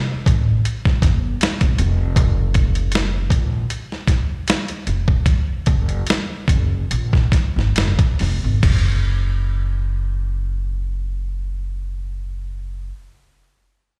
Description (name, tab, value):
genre	R&B, neo-soul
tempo	67-79 BPM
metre	4/4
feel	swing 54% on 16ths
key	F# major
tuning	A4 = 438 Hz
part	upright bass	bass	0.3-12.9 s	F1 to A#1	-22 LUFS	equal	none
part	boom bap sampler-style drum kit	drums	0.3-8.9 s	crash cymbal, hi-hat, kick drum, snare drum	-20 LUFS	equal	none
room	little or no reverb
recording	live gig heard through the venue's PA, recital hall reverb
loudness	-19 LUFS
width	mono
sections	0.0-8.6 A section; 8.6-12.2 B section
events	slowing down 2.2-8.6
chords	none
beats	0.64 1.40 | 2.16 2.92 3.69 4.47 | 5.26 6.07 6.90 7.75 | 8.63 9.52 10.41 11.31